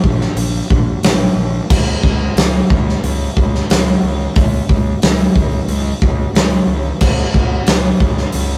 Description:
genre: hard rock.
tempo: 90 BPM.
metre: 4/4.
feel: straight.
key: unclear.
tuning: A4 = 440 Hz.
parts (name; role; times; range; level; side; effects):
fuzz fingered electric bass; bass; 0.0-8.6 s; Bb1 to Db2; -20 LUFS; equal; overdrive.
big rock drum kit; drums; 0.0-8.5 s; crash cymbal, hi-hat, kick drum, snare drum; -16 LUFS; equal; none.
room: light reverb.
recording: rough rehearsal-room recording, warm saturation.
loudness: -15 LUFS.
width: mono.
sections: 0.0-8.6 A section.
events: none.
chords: none.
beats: 0.37 1.04 | 1.70 2.37 3.03 3.69 | 4.36 5.02 5.68 6.35 | 7.01 7.67 8.34.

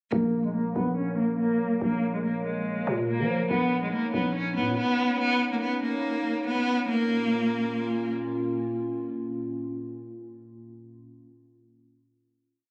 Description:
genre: hip hop, drill.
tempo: 142 BPM.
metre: 4/4.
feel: half-time.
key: Bb phrygian.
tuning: A4 = 440 Hz.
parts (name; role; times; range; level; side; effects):
rich cello; melody; 0.1-8.1 s; Ab3 to Db4; -28 LUFS; equal; low-pass filter, tape echo.
warbly tape-like pad; sustained chords; 0.1-11.0 s; Bb2 to F5; -35 LUFS; equal; chorus, built-in reverb, low-pass filter.
growling 808-style bass; bass; 0.1-4.8 s; Bb1 to F3; -32 LUFS; equal; none.
room: light reverb, small room ambience.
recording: recorded on a phone in the room, club reverb.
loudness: -27 LUFS.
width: mono.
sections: 0.1-6.9 breakdown; 6.9-10.3 final chord.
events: filter sweep 0.1-6.9.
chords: 0.1 Bbm; 3.5 Badd9/Bb; 6.9 Bbm.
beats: | 0.12 0.55 0.97 1.39 | 1.81 2.24 2.66 3.08 | 3.50 3.93 4.35 4.77 | 5.20 5.62 6.04 6.46 | 6.88 7.31 7.73 8.15 | 8.57 9.00 9.42 9.84.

